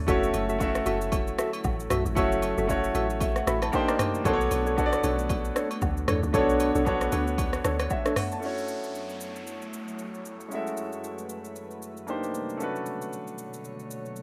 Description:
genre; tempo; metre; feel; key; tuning
amapiano; 115 BPM; 4/4; swing 58% on 16ths; unclear; A4 = 440 Hz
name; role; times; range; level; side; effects
clear baby grand piano; accompaniment; 0.0-14.2 s; G#3 to B5; -32 LUFS; equal; none
glassy FM pad; sustained chords; 0.0-14.2 s; F#2 to C#5; -40 LUFS; equal; ensemble chorus, built-in reverb, sidechain pumping
percussive organ stab; stabs; 0.1-8.2 s; D4 to E5; -32 LUFS; equal; chorus, tape echo
deep log drum bass; bass; 0.1-7.9 s; F#1 to E2; -34 LUFS; equal; none
deep house drum kit; drums; 0.1-14.2 s; hi-hat, kick drum, rim click, shaker, toms; -33 LUFS; equal; none
agogo bells and woodblock; percussion; 0.1-8.3 s; none; -41 LUFS; equal; none
downlifter; sound effects; 8.4-12.6 s; none; -49 LUFS; equal; none
room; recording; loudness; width
light reverb; rough home demo mix; -27 LUFS; mono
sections
0.0-8.4 A section; 8.4-14.2 B section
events
drop 0.0-8.4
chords
0.1 F#m7; 3.7 Cm9; 4.3 Bm9; 8.4 F#m7; 12.1 Cm9; 12.6 Bm9

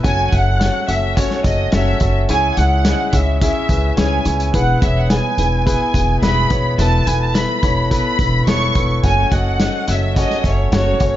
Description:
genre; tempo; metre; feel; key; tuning
piano-driven pop; 107 BPM; 4/4; straight; unclear; A4 = 440 Hz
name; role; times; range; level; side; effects
clear concert grand piano; accompaniment; 0.0-11.2 s; C#3 to E5; -21 LUFS; left 3 dB; none
upright bass; bass; 0.0-11.2 s; E1 to C#2; -18 LUFS; equal; none
loose indie drum kit; drums; 0.0-11.1 s; hi-hat, kick drum, snare drum; -20 LUFS; equal; none
warm studio violin section; melody; 0.1-11.1 s; C#5 to C#6; -20 LUFS; right 1 dB; none
room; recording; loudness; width
small room ambience; nothing above 7.6 kHz; -14 LUFS; side -13 dB against mid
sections
0.0-11.2 A section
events
none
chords
0.0 F#m; 2.3 C#m; 4.5 E; 6.8 Asus2/E; 9.0 F#m

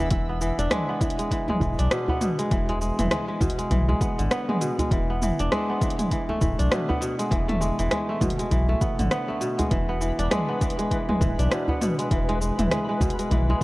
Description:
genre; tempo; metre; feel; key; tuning
organic downtempo; 100 BPM; 4/4; swing 59% on 16ths; unclear; A4 = 440 Hz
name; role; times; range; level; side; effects
kora; arpeggios; 0.0-13.6 s; B2 to D4; -26 LUFS; equal; digital delay
warm sub bass; bass; 0.0-13.5 s; D1 to B1; -25 LUFS; equal; sidechain pumping
twinkling granular texture; texture; 0.0-0.1, 9.8-13.6 s; B4 to E5; -38 LUFS; left 2 dB; built-in reverb
deep house drum kit; drums; 0.1-13.5 s; hi-hat, rim click, shaker, toms; -28 LUFS; equal; overdrive
electronic kick drum; drums; 0.1-13.6 s; none; -26 LUFS; equal; overdrive
djembe; percussion; 0.7-13.6 s; none; -31 LUFS; equal; none
room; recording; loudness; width
light reverb; worn, warbling old tape, cassette tape, warbly pitch drift; -22 LUFS; side -20 dB against mid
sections
0.1-13.6 A section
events
none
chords
0.1 E7; 4.9 Asus2; 9.7 E7

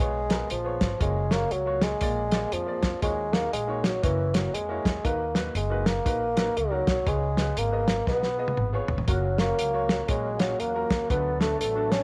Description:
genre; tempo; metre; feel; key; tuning
uptempo gospel; 119 BPM; 4/4; swing 61% on 8ths; F# major; A4 = 440 Hz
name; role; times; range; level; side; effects
mellow bassoon; melody; 0.0-12.0 s; E3 to C#4; -30 LUFS; equal; slapback echo
clear baby grand piano; accompaniment; 0.0-12.0 s; A#2 to D#5; -37 LUFS; equal; none
upright bass; bass; 0.0-12.0 s; F#1 to E#2; -34 LUFS; equal; none
warm soul drum kit; drums; 0.0-12.0 s; hi-hat, kick drum, snare drum, toms; -29 LUFS; equal; none
percussive tonewheel organ; sustained chords; 9.1-12.0 s; F#3 to A4; -39 LUFS; equal; slow rotary speaker, overdrive, chorus vibrato
room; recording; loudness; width
moderate spring reverb, RT60 1.5 s, small room ambience; tape saturation; -26 LUFS; mono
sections
0.0-12.0 A section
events
drum fill 8.1-9.1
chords
0.0 C#7; 1.0 F#maj7; 2.0 A#7; 3.0 D#m7; 4.0 F#7; 5.0 Bmaj7; 7.1 C#7; 9.1 F#maj7; 11.1 D6

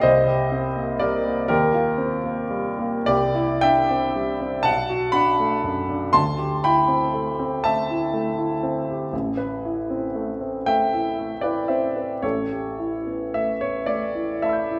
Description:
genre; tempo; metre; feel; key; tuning
classical, impressionist solo piano; 39 BPM (dotted quarters); 6/8; uneven beats, rubato; Eb major; A4 = 440 Hz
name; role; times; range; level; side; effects
clear grand piano; solo; 0.0-14.8 s; A1 to G6; -23 LUFS; equal; none
room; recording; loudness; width
wet recital hall reverb, RT60 1.7 s; heard from further back in the room; -23 LUFS; mono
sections
0.0-14.8 A section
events
none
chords
0.1 Cm7; 1.5 Eb69; 3.1 Cadd9; 4.7 Bm7; 6.2 D11; 9.1 Amadd9; 12.2 A9

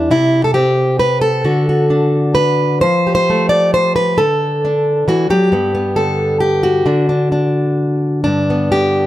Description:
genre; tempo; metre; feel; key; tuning
folk, solo fingerstyle acoustic guitar; 132 BPM; 3/4; rubato; G major; A4 = 439 Hz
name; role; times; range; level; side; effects
fingerpicked plugged-in steel-string acoustic guitar; solo; 0.0-9.1 s; E2 to D5; -12 LUFS; equal; none
room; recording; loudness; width
moderate studio reverb, RT60 0.5 s; none; -12 LUFS; side -14 dB against mid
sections
0.0-8.3 A section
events
none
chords
0.1 C6; 1.4 D; 2.8 Fadd9; 4.2 D; 5.5 G; 6.9 N.C.; 8.3 G

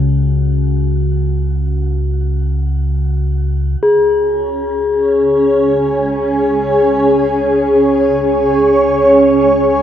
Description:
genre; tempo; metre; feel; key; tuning
dark ambient drone; free time; none; none; unclear; A4 = 439 Hz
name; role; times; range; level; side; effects
deep rumbling drone; drone; 0.0-9.8 s; C#2 to C#3; -18 LUFS; equal; built-in reverb
quartz singing bowl; texture; 0.0-9.8 s; F#4 to G#4; -17 LUFS; left 2 dB; shimmer reverb
granular cloud pad; sustained chords; 4.6-9.8 s; C#4 to C#5; -11 LUFS; right 1 dB; built-in reverb, shimmer reverb
room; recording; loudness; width
wet lush hall reverb, RT60 2.6 s; dreamy mix soaked in reverb; -11 LUFS; side -10 dB against mid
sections
0.0-3.8 A section; 3.8-9.8 B section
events
fade-in on synth drone 3.8-9.8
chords
0.0 C#sus4; 3.8 C#5

